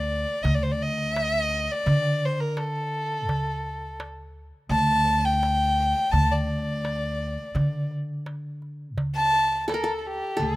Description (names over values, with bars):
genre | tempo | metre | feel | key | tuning
Arabic maqam ensemble | 84 BPM | 4/4 | straight | D maqam hijaz | A4 = 440 Hz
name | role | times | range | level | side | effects
rich violin | melody | 0.0-10.6 s | G4 to A5 | -25 LUFS | equal | none
upright bass | bass | 0.0-10.6 s | D2 to D3 | -28 LUFS | equal | none
darbuka | percussion | 0.3-10.6 s | none | -29 LUFS | right 1 dB | none
qanun | second line | 9.7-10.6 s | A4 to Bb4 | -27 LUFS | equal | none
room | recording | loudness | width
small room ambience | rough home demo mix | -22 LUFS | side -18 dB against mid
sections
0.0-10.4 A section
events
none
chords
none